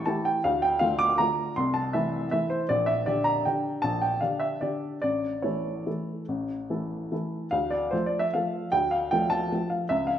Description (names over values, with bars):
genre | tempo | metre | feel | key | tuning
classical, piano waltz | 138-167 BPM | 3/4 | rubato | D minor | A4 = 440 Hz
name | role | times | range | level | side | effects
warm upright piano | solo | 0.0-10.2 s | A1 to D6 | -24 LUFS | equal | none
room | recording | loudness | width
moderate recital hall reverb, RT60 1.5 s | minimal, uncompressed stereo recording | -24 LUFS | side -10 dB against mid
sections
0.0-7.5 A section; 7.5-10.2 B section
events
none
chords
0.4 Dm; 1.6 Am/C; 2.7 Gm/Bb; 5.0 A; 7.5 Dm